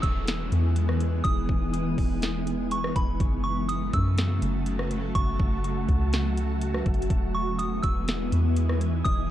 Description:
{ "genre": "hip hop, atmospheric cloud-rap", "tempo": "123 BPM", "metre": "4/4", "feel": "half-time", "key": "E major", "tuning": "A4 = 439 Hz", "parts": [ { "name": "delicate synth tine bell", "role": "melody", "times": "0.0-9.3 s", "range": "B5 to E6", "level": "-34 LUFS", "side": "right 2 dB", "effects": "chorus, ping-pong delay" }, { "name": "granular cloud pad", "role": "sustained chords", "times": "0.0-9.3 s", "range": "C#3 to F#4", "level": "-30 LUFS", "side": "equal", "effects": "built-in reverb, sidechain pumping" }, { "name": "soft 808-style bass", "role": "bass", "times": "0.0-9.3 s", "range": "E1 to F#2", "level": "-27 LUFS", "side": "equal", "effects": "none" }, { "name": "smooth R&B drum kit", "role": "drums", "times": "0.0-9.2 s", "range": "hi-hat, kick drum, rim click, snare drum", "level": "-28 LUFS", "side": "equal", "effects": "none" }, { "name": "downlifter", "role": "sound effects", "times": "0.0-3.2 s", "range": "none", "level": "-46 LUFS", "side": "equal", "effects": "none" }, { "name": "wind-like tuned noise texture", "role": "texture", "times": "0.0-9.3 s", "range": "D#4 to A5", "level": "-39 LUFS", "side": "equal", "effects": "built-in reverb" } ], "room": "little or no reverb", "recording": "worn, warbling old tape, cassette tape, warbly pitch drift", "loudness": "-23 LUFS", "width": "side -12 dB against mid", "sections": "0.0-9.3 A section", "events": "none", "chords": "0.0 Emaj7; 3.2 F#m7; 7.1 Emaj7" }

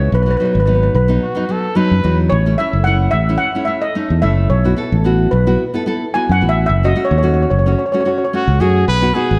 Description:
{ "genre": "calypso", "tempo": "110 BPM", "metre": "4/4", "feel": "swing 53% on 16ths", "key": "unclear", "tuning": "A4 = 440 Hz", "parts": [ { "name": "nylon-string guitar", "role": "accompaniment", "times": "0.0-9.3 s", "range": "F#3 to A4", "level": "-22 LUFS", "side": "equal", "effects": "none" }, { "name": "fingered electric bass", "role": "bass", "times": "0.0-9.4 s", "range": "F#1 to F#2", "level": "-17 LUFS", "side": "equal", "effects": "none" }, { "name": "steel pan", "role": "melody", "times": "0.1-8.3 s", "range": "B4 to G#5", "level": "-21 LUFS", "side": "equal", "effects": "delay" }, { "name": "clear trumpet", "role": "second line", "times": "1.2-2.2, 8.4-9.4 s", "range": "F#4 to B4", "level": "-22 LUFS", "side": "equal", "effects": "none" } ], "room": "moderate concert hall reverb, RT60 1.7 s", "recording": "none", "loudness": "-15 LUFS", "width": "mono", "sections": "0.0-9.4 A section", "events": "steel pan solo 0.0-9.4", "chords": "0.1 B; 2.3 A; 4.5 B7sus4; 6.7 F#m; 8.9 B" }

